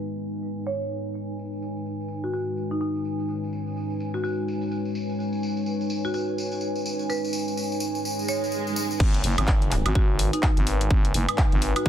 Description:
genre	bass house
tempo	126 BPM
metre	4/4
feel	swing 60% on 16ths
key	G# minor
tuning	A4 = 437 Hz
part	deep dark ambient pad	sustained chords	0.0-11.9 s	G#3 to C#5	-31 LUFS	left 1 dB	chorus, built-in reverb, sidechain pumping
part	warbly tape-like pad	texture	0.0-11.9 s	D#4 to G#5	-33 LUFS	right 3 dB	chorus, built-in reverb, sidechain pumping
part	marimba with medium hard mallets	melody	0.7-11.9 s	D#4 to C#5	-32 LUFS	equal	digital delay
part	tambourine	percussion	1.4-9.0 s	none	-35 LUFS	left 1 dB	none
part	swell	sound effects	8.2-9.0 s	none	-32 LUFS	right 1 dB	none
part	growling FM bass	bass	9.0-11.7 s	F#1 to G#1	-25 LUFS	equal	tube saturation, sidechain pumping
part	electronic kick drum	drums	9.0-11.9 s	none	-22 LUFS	equal	overdrive
part	house drum kit	drums	9.0-11.8 s	crash cymbal, handclaps, hi-hat, woodblock	-28 LUFS	right 1 dB	none
room	light reverb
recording	dense, heavily limited modern master, low-pass filter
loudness	-24 LUFS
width	side -10 dB against mid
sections	0.0-9.0 A section; 9.0-11.9 B section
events	filter sweep on ambient pad 0.0-9.0; filter sweep 0.0-9.0; swell 8.2-9.0; drop 9.0-11.9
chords	0.0 G#m

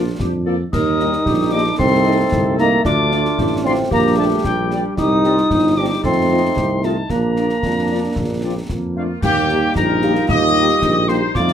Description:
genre	military-style march for wind band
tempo	113 BPM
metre	2/4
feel	straight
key	unclear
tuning	A4 = 441 Hz
part	dark woodwind section	second line	0.0-11.5 s	A3 to Bb4	-26 LUFS	left 4 dB	none
part	dark French horn section	accompaniment	0.0-11.2 s	F3 to G4	-24 LUFS	left 4 dB	none
part	warm trombone section	sustained chords	0.0-11.5 s	F3 to F4	-25 LUFS	right 1 dB	none
part	mellow tuba	bass	0.0-11.5 s	G1 to F2	-20 LUFS	right 2 dB	none
part	concert snare drum, concert bass drum and clash cymbals	drums	0.2-11.5 s	none	-25 LUFS	left 1 dB	none
part	clear trumpet section	melody	0.4-11.5 s	F4 to Eb5	-24 LUFS	left 2 dB	none
part	clear euphonium	second line	0.7-11.5 s	G3 to G4	-20 LUFS	right 2 dB	none
part	piccolo	second line	0.7-11.5 s	F5 to Eb6	-22 LUFS	left 3 dB	none
room	light reverb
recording	none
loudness	-14 LUFS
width	side -9 dB against mid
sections	0.0-9.2 A section; 9.2-11.5 B section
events	none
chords	0.0 Bb; 0.7 Eb; 1.8 Adim/C; 2.9 Dm; 3.9 Gm/Bb; 5.0 Cm; 6.0 F7; 7.1 Bb; 9.2 Eb

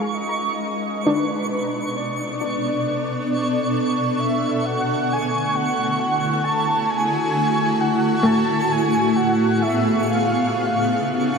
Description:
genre	ambient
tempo	67 BPM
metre	4/4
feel	straight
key	unclear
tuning	A4 = 445 Hz
part	breathy flute-like synth lead	melody	0.0-11.4 s	Cb5 to A5	-24 LUFS	equal	ensemble chorus, shimmer reverb, ping-pong delay
part	granular cloud pad	sustained chords	0.0-11.4 s	A2 to Bb4	-22 LUFS	equal	built-in reverb, shimmer reverb
part	soft round pluck	arpeggios	0.0-10.4 s	A3 to Bb5	-26 LUFS	left 2 dB	lush chorus, shimmer reverb, ping-pong delay
part	twinkling granular texture	texture	0.0-11.4 s	Db6	-27 LUFS	right 3 dB	built-in reverb, shimmer reverb
room	wet huge ambient reverb, RT60 8.0 s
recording	cassette tape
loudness	-18 LUFS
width	side -5 dB against mid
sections	0.0-11.4 A section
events	fade-in on ambient pad 0.0-11.4; fade-in on soft synth lead 0.0-11.4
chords	0.0 Absus4; 1.1 Cbm7; 4.7 Dmaj7; 8.2 Amaj7; 10.0 Db7

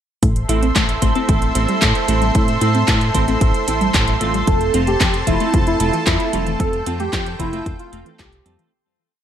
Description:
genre	italo disco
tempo	113 BPM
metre	4/4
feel	straight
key	F major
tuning	A4 = 440 Hz
part	lush unison pad	sustained chords	0.2-8.7 s	A4 to C6	-23 LUFS	right 1 dB	chorus
part	warbly dusty pluck	arpeggios	0.2-8.7 s	E3 to A4	-25 LUFS	left 2 dB	chorus, ping-pong delay
part	chorused synth bass	bass	0.2-8.6 s	F1 to A2	-21 LUFS	equal	tube saturation
part	electronic kick drum	drums	0.2-8.3 s	none	-19 LUFS	equal	studio ambience
part	house drum kit	drums	0.2-8.7 s	handclaps, hi-hat	-22 LUFS	right 1 dB	studio ambience, gated reverb
part	clean electric guitar	stabs	0.5-8.7 s	A3 to C5	-25 LUFS	right 3 dB	analog chorus
part	wide unison lead	melody	4.5-8.6 s	E4 to A4	-22 LUFS	right 1 dB	none
room	light reverb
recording	none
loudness	-15 LUFS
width	side -10 dB against mid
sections	0.2-8.7 verse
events	fade-out 5.9-8.7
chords	0.2 Am; 4.5 F

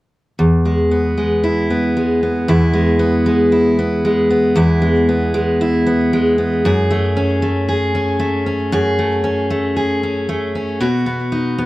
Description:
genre	pop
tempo	115 BPM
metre	4/4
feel	straight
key	E major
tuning	A4 = 440 Hz
part	picked steel-string acoustic guitar	solo	0.4-11.7 s	E2 to G#4	-14 LUFS	equal	digital delay
room	moderate studio reverb, RT60 0.6 s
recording	none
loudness	-14 LUFS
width	side -18 dB against mid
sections	0.4-2.5 A section; 2.5-11.7 B section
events	none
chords	0.4 E; 6.6 F#madd9; 10.8 B

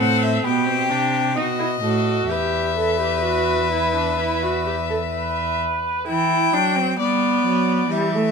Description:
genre	classical, baroque-style fugue for string quartet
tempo	64 BPM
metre	4/4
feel	straight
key	E minor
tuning	A4 = 439 Hz
part	rich violin	melody	0.0-8.3 s	D5 to G5	-23 LUFS	left 10 dB	none
part	rich violin	second line	0.0-5.6 s	F#4 to B4	-26 LUFS	left 2 dB	none
part	rich viola	accompaniment	0.0-8.3 s	G3 to B4	-22 LUFS	right 2 dB	none
part	rich cello	bass	0.0-8.3 s	E2 to G3	-25 LUFS	right 4 dB	none
room	light reverb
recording	minimal, uncompressed stereo recording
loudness	-18 LUFS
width	side -5 dB against mid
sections	0.0-6.1 A section; 6.1-8.3 B section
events	none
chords	0.4 Gadd11/B; 1.4 B7; 2.3 Em

